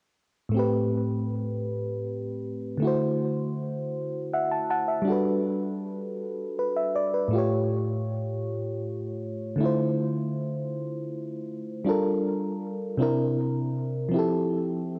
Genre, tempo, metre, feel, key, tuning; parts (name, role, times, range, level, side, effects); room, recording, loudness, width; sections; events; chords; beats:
R&B; 53 BPM (dotted quarters); 6/8; straight; A minor; A4 = 437 Hz
FM electric piano; solo; 0.5-15.0 s; A2 to A5; -28 LUFS; equal; cassette tape, tape echo
moderate spring reverb, RT60 2.2 s; home recording on cassette; -28 LUFS; mono
0.5-15.0 A section
FM electric piano fill 3.9-5.1
0.5 Am9; 2.8 D9; 5.1 Gmaj7; 7.3 A7b13; 9.6 Dm7; 11.9 Gm9; 13.0 C9; 14.1 Fmaj9
| 0.54 1.67 | 2.80 3.93 | 5.07 6.20 | 7.33 8.46 | 9.59 10.73 | 11.86 12.99 | 14.12